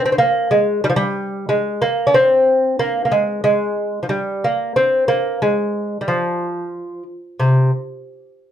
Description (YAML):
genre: persian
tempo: 92 BPM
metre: 4/4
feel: straight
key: unclear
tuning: A4 = 440 Hz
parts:
  - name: lute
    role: solo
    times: 0.0-7.7 s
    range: C3 to D4-50c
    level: -16 LUFS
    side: equal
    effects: none
room: wet small room ambience, RT60 0.5 s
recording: rough home demo mix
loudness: -15 LUFS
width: side -10 dB against mid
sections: 0.0-7.4 A section; 7.4-8.5 B section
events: none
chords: none